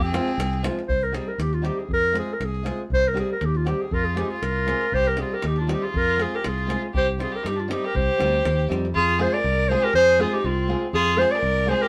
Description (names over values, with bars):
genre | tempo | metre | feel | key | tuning
balkan folk, Balkan wedding band | 119 BPM | 2/4 | straight | unclear | A4 = 439 Hz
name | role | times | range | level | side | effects
warm clarinet | melody | 0.0-11.9 s | C4 to D5 | -26 LUFS | equal | none
rich violin | second line | 0.0-0.6, 3.9-11.9 s | C4 to Bb4 | -30 LUFS | equal | none
fingered electric bass | bass | 0.0-11.7 s | C2 to G2 | -29 LUFS | equal | none
nylon-string guitar | accompaniment | 0.1-11.8 s | F3 to Ab4 | -32 LUFS | equal | none
davul | percussion | 0.1-8.9 s | none | -32 LUFS | equal | none
room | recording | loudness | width
moderate studio reverb, RT60 0.7 s | band playing live in one room | -23 LUFS | mono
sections
0.9-8.9 A section; 8.9-11.9 B section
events
none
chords
0.0 Fm; 0.9 Cm; 1.9 Fm; 2.9 Cm; 3.9 Fm; 4.9 Cm; 5.9 Fm; 6.9 Cm; 8.9 Fm